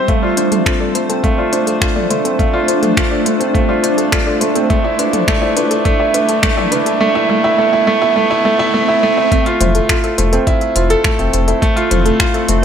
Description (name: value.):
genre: piano and strings electronica.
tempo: 104 BPM.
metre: 4/4.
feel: straight.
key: unclear.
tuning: A4 = 440 Hz.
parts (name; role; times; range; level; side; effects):
granular cloud pad; sustained chords; 0.0-12.6 s; G3 to C5; -21 LUFS; equal; built-in reverb, sidechain pumping.
soft round pluck; arpeggios; 0.0-12.5 s; A4 to F5; -22 LUFS; left 4 dB; wide subtle chorus, sidechain pumping, ping-pong delay.
warm upright piano; riff; 0.0-12.6 s; A3 to G5; -14 LUFS; right 2 dB; ping-pong delay.
riser; sound effects; 0.4-9.3 s; none; -26 LUFS; right 1 dB; none.
electronic kick drum; drums; 0.1-12.3 s; none; -17 LUFS; left 1 dB; none.
organic electronic drum kit; drums; 0.1-12.6 s; finger snaps, hi-hat, toms; -19 LUFS; equal; none.
round analog bass; bass; 9.6-12.6 s; F1; -16 LUFS; left 1 dB; sidechain pumping.
room: moderate echo chamber reverb, RT60 1.4 s.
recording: none.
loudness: -12 LUFS.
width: side -8 dB against mid.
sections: 0.0-9.3 A section; 9.3-12.6 B section.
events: build-up 0.0-9.3; riser 0.4-9.3; drop 9.3-12.6.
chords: 0.1 Dm7; 4.7 Em7; 9.3 Fmaj7.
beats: | 0.08 0.66 1.24 1.81 | 2.39 2.97 3.54 4.12 | 4.70 5.28 5.85 6.43 | 7.01 7.58 8.16 8.74 | 9.31 9.89 10.47 11.04 | 11.62 12.20.